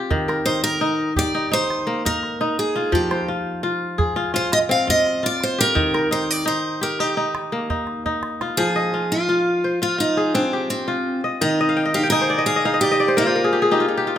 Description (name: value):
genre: west african traditional, West African string and xylophone music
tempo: 85 BPM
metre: 4/4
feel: straight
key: F dorian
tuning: A4 = 442 Hz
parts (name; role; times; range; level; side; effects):
- kora; arpeggios; 0.0-14.2 s; Eb3 to Ab5; -21 LUFS; left 2 dB; none
- calabash; percussion; 0.1-8.6 s; none; -27 LUFS; right 2 dB; none
- picked steel-string acoustic guitar; melody; 0.5-13.8 s; C4 to F5; -21 LUFS; right 1 dB; none
room: moderate recital hall reverb, RT60 1.7 s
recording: minimal, uncompressed stereo recording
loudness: -18 LUFS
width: side -10 dB against mid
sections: 0.0-8.6 A section; 8.6-14.2 B section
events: steel-string acoustic guitar solo 0.0-8.6; drum fill 8.1-8.6; kora fill 11.6-14.2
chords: 0.1 Eb; 2.9 Fm; 5.8 Eb; 8.6 Fm; 11.4 Eb5